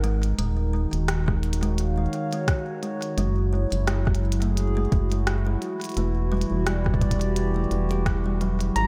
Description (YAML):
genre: IDM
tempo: 86 BPM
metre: 4/4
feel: swing 56% on 16ths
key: unclear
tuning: A4 = 440 Hz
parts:
  - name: hollow soft pad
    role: sustained chords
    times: 0.0-8.9 s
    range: D#3 to F#5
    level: -32 LUFS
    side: equal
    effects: chorus
  - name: kalimba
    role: arpeggios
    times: 0.0-8.7 s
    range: F#3 to G4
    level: -34 LUFS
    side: equal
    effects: delay
  - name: rubbery square bass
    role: bass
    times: 0.0-8.9 s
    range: D#1 to G#1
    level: -26 LUFS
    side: equal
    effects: none
  - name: glitchy drum kit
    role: drums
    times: 0.0-8.9 s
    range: hi-hat, rim click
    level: -35 LUFS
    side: equal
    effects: small room ambience, delay
  - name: electronic kick drum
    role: drums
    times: 1.3-8.2 s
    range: none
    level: -26 LUFS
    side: equal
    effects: small room ambience
  - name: soft struck synth lead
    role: melody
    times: 8.8-8.9 s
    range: A#5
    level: -24 LUFS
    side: equal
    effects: chorus, cassette tape
room: light reverb, digital ambience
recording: none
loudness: -25 LUFS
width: mono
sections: 0.0-8.9 A section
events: none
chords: 0.4 D#m9; 3.2 F#7sus2; 5.6 Em9